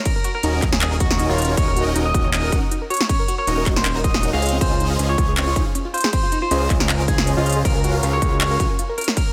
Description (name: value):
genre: future bass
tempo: 158 BPM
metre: 4/4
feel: swing 53% on 16ths, half-time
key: Eb dorian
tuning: A4 = 440 Hz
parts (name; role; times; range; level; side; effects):
- electric guitar at the edge of break-up; melody; 0.0-9.3 s; F4 to F5; -28 LUFS; equal; spring reverb, sidechain pumping, delay
- unison pluck; arpeggios; 0.1-9.3 s; C4 to Db5; -31 LUFS; equal; sidechain pumping, tape echo
- dubstep drum kit; drums; 0.1-9.2 s; crash cymbal, handclaps, hi-hat, snare drum; -27 LUFS; equal; none
- electronic kick drum; drums; 0.1-9.2 s; none; -24 LUFS; equal; none
- supersaw chords; riff; 0.4-8.7 s; Db4 to Ab5; -28 LUFS; equal; phaser, sidechain pumping
- fat analog bass; bass; 0.4-8.7 s; Eb1 to Db2; -24 LUFS; equal; sidechain pumping
room: light reverb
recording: none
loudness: -19 LUFS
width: mono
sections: 0.0-9.3 A section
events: none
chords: 0.0 Ebm7; 4.4 Dbmaj9; 7.7 Gbmaj7/Db